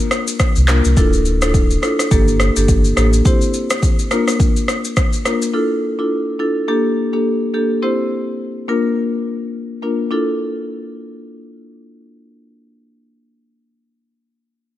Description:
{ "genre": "afrobeats", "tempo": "105 BPM", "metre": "4/4", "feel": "swing 58% on 16ths", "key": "D minor", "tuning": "A4 = 440 Hz", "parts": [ { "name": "marimba with medium mallets", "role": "accompaniment", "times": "0.0-13.1 s", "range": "Bb3 to C5", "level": "-18 LUFS", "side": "left 1 dB", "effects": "none" }, { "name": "afro-pop drum kit", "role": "drums", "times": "0.1-5.5 s", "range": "handclaps, kick drum, rim click, shaker", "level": "-16 LUFS", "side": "equal", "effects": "overdrive" }, { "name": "sub bass with octave", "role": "bass", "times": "0.6-3.2 s", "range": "D1 to C2", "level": "-15 LUFS", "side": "equal", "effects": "none" } ], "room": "digital ambience", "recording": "none", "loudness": "-14 LUFS", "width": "side -13 dB against mid", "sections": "1.0-10.1 A section; 10.1-12.4 B section", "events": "none", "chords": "0.0 Bb; 1.0 Dmadd9; 2.1 Gmadd9; 3.3 C; 4.1 Bb; 5.5 Dmadd9; 6.7 Gmadd9; 7.8 C; 8.7 Bb; 10.1 Dmadd9" }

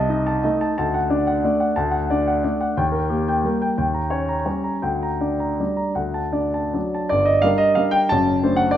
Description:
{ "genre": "classical, piano waltz", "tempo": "150-190 BPM", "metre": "3/4", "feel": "rubato", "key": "G minor", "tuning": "A4 = 440 Hz", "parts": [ { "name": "warm grand piano", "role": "solo", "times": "0.0-8.8 s", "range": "F#1 to Bb5", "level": "-18 LUFS", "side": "equal", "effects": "none" } ], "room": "moderate recital hall reverb, RT60 1.5 s", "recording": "none", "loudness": "-18 LUFS", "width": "side -11 dB against mid", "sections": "0.0-7.1 A section; 7.1-8.8 B section", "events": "none", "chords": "0.0 Adim/C; 0.8 D; 2.8 Eb; 3.8 Eb7; 4.8 Gm/D; 6.0 D; 7.1 Gm; 8.1 D7/F#" }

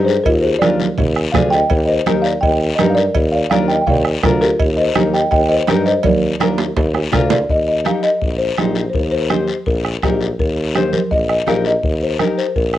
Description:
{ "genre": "latin, cumbia", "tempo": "166 BPM", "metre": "4/4", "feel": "straight", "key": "Eb major", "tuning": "A4 = 440 Hz", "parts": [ { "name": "folk marimba with soft mallets", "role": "melody", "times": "0.0-12.8 s", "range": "F4 to G5", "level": "-18 LUFS", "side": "equal", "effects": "none" }, { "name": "nylon-string guitar", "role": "accompaniment", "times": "0.0-12.5 s", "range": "D4 to C5", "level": "-20 LUFS", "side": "left 6 dB", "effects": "cassette tape" }, { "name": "warm tuba", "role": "bass", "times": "0.0-12.8 s", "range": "Bb1 to G2", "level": "-19 LUFS", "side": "equal", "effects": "none" }, { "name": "guiro", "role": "percussion", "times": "0.1-12.8 s", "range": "none", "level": "-29 LUFS", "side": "left 7 dB", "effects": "none" }, { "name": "bombo", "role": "percussion", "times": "0.3-12.8 s", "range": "none", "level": "-21 LUFS", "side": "equal", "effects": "none" }, { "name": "cowbell and timbales", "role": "percussion", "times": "0.3-7.4 s", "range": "none", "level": "-26 LUFS", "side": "right 7 dB", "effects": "none" }, { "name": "congas", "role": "percussion", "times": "0.6-12.4 s", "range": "none", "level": "-21 LUFS", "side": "right 6 dB", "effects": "none" } ], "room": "moderate studio reverb, RT60 0.6 s", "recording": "home recording on cassette", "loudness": "-14 LUFS", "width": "side -13 dB against mid", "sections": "0.0-7.5 A section; 7.5-12.8 B section", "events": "drum fill 6.0-7.5", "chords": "0.3 Bb/Eb; 1.7 Eb; 3.1 Bb/Eb; 4.6 Eb; 6.0 Bb/Eb; 7.5 Eb" }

